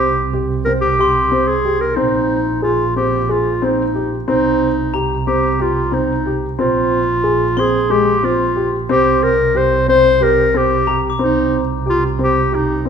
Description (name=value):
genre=contemporary instrumental, chamber music in an uneven meter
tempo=182 BPM (eighths)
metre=7/8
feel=straight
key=C minor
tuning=A4 = 440 Hz
part: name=warm clarinet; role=melody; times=0.0-12.9 s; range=Eb4 to C5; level=-16 LUFS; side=left 2 dB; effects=none
part: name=dark concert grand piano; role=arpeggios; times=0.0-12.9 s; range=Ab3 to Ab4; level=-18 LUFS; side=equal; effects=none
part: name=dark double bass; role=bass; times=0.0-12.9 s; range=Bb1 to C2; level=-22 LUFS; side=right 4 dB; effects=none
part: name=glockenspiel with soft plastic mallets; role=texture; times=1.0-11.7 s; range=Bb5 to D6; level=-27 LUFS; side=left 4 dB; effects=none
room=moderate recital hall reverb, RT60 1.4 s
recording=minimal, uncompressed stereo recording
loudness=-13 LUFS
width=side -7 dB against mid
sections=0.0-12.9 A section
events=none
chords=0.0 C5; 2.0 Bb9sus4; 4.3 Cm7; 6.6 Bbsus2; 8.9 Csus2